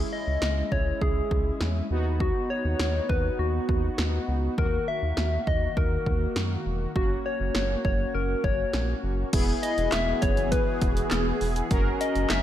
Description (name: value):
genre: synth-pop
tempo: 101 BPM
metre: 4/4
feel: straight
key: unclear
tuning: A4 = 441 Hz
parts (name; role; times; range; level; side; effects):
- analog synth brass; accompaniment; 0.0-12.4 s; D#3 to A#4; -31 LUFS; equal; chorus, shimmer reverb
- round analog bass; bass; 0.0-12.4 s; E1 to F#2; -28 LUFS; equal; none
- soft struck synth lead; melody; 0.1-12.4 s; F#4 to E5; -30 LUFS; left 2 dB; chorus, ping-pong delay, shimmer reverb
- punchy analog drum machine; drums; 0.4-12.4 s; crash cymbal, handclaps, hi-hat, kick drum, snare drum; -28 LUFS; equal; gated reverb
- phased analog pad; sustained chords; 9.6-12.4 s; E3 to A#4; -32 LUFS; equal; phaser, chorus, shimmer reverb
room: light reverb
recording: none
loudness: -24 LUFS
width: side -11 dB against mid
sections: 0.0-9.3 A section; 9.3-12.4 B section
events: none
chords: 0.0 C#m; 1.9 B/D#; 4.6 D#m; 7.0 F#; 9.3 Eadd9; 11.7 F#add9